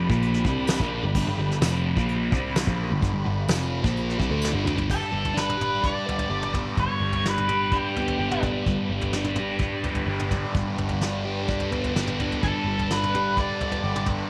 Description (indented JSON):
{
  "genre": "psychedelic rock",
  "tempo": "127 BPM",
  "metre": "4/4",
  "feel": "straight",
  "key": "G major",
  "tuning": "A4 = 440 Hz",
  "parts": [
    { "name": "rich studio string section", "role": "sustained chords", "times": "0.0-14.3 s", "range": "D4 to B5", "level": "-40 LUFS", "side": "equal", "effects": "none" },
    { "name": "thick fuzz guitar", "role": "riff", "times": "0.0-14.3 s", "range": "F2 to G4", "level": "-28 LUFS", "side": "equal", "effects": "distortion, phaser" },
    { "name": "picked electric bass", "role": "bass", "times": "0.0-14.2 s", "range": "F1 to D2", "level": "-32 LUFS", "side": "equal", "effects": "none" },
    { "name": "soft brush drum kit", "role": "drums", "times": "0.1-14.2 s", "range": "crash cymbal, hi-hat, kick drum, snare drum, toms", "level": "-31 LUFS", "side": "equal", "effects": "none" },
    { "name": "tambourine", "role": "percussion", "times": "0.7-4.5 s", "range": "none", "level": "-42 LUFS", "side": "equal", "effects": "none" },
    { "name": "octave-fuzz lead guitar", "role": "melody", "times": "4.9-8.4, 12.4-14.1 s", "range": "G4 to D5", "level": "-29 LUFS", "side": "equal", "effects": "distortion, slapback echo" }
  ],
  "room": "light reverb, small room ambience",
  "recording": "none",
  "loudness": "-25 LUFS",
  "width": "mono",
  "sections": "0.0-4.9 A section; 4.9-14.3 B section",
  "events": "drum fill 4.4-4.9",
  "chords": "0.0 G",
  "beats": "0.21 0.68 | 1.15 1.61 2.08 2.55 | 3.02 3.49 3.96 4.43 | 4.90 5.37 5.84 6.31 | 6.78 7.25 7.72 8.19 | 8.66 9.13 9.61 10.08 | 10.55 11.02 11.49 11.96 | 12.43 12.90 13.37 13.84"
}